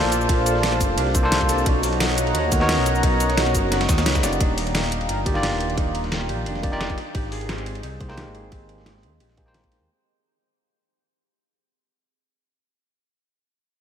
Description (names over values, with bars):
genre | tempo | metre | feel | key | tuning
liquid drum and bass | 175 BPM | 4/4 | swing 53% on 16ths | Eb major | A4 = 440 Hz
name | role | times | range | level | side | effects
bell-like tine electric piano | accompaniment | 0.0-9.9 s | Eb3 to G5 | -26 LUFS | equal | diffuse ambient delay
warm analog pad | sustained chords | 0.0-9.9 s | C5 to A#5 | -27 LUFS | right 1 dB | chorus, sidechain pumping
Celtic harp | arpeggios | 0.0-12.5 s | C4 to B4 | -30 LUFS | left 1 dB | low-pass filter, analog delay
dark detuned saw bass | bass | 0.0-9.9 s | Eb1 to D#2 | -26 LUFS | equal | none
dusty soul sampler-style drum kit | drums | 0.1-9.8 s | hi-hat, ride cymbal, snare drum | -31 LUFS | right 1 dB | overdrive, high-pass filter on cymbals, high-pass filter on hats, high-pass filter on snare, high-pass filter on room
pop drum kit | drums | 0.1-9.9 s | cabasa, hi-hat, snare drum | -27 LUFS | equal | overdrive, low-pass filter on hats, low-pass filter on perc, low-pass filter on snare, low-pass filter on room
electronic kick drum | drums | 0.3-9.7 s | none | -23 LUFS | equal | none
room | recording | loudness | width
moderate huge ambient reverb, RT60 4.5 s | dreamy mix soaked in reverb | -19 LUFS | side -8 dB against mid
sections
0.0-4.4 A section; 4.4-9.9 B section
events
drop 0.0-4.4; fade-out 4.4-9.9; filter sweep on drum 4.4-9.9; filter sweep on harp 4.4-9.9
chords
0.0 Bbmaj9; 1.7 Bmaj9; 4.4 Ebmaj9; 7.0 Abmaj9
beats
| 0.29 0.63 0.98 1.32 | 1.66 2.00 2.35 2.69 | 3.03 3.38 3.72 4.06 | 4.41 4.75 5.09 5.43 | 5.78 6.12 6.46 6.80 | 7.15 7.49 7.83 8.18 | 8.52 8.86 9.21 9.55